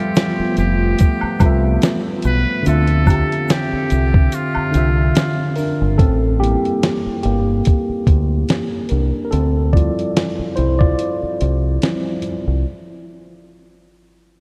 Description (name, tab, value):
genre	lo-fi hip hop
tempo	72 BPM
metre	4/4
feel	swing 55% on 16ths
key	D minor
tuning	A4 = 442 Hz
part	trumpet with metal mute	melody	0.0-5.6 s	F4 to B4	-27 LUFS	equal	low-pass filter, tape echo
part	tine electric piano	accompaniment	0.0-12.7 s	D3 to E5	-23 LUFS	equal	cassette tape, low-pass filter
part	warbly tape-like pad	sustained chords	0.0-6.0 s	D3 to E5	-27 LUFS	equal	chorus, built-in reverb, low-pass filter
part	dusty soul sampler-style drum kit	drums	0.2-12.4 s	hi-hat, kick drum, snare drum	-19 LUFS	equal	none
part	egg shaker and woodblock	percussion	0.2-5.8 s	none	-33 LUFS	equal	none
part	deep dub fingered electric bass	bass	0.4-12.6 s	F1 to D2	-19 LUFS	equal	none
room	moderate lush hall reverb, RT60 3.2 s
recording	dreamy mix soaked in reverb, faint mains hum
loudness	-17 LUFS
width	mono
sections	0.0-6.0 A section; 6.0-12.7 B section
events	kick muted 4.3-6.0; tine electric piano solo 6.0-12.7; break 11.0-12.7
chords	0.0 G13; 2.7 Dm9; 6.0 Am7; 9.3 Dm11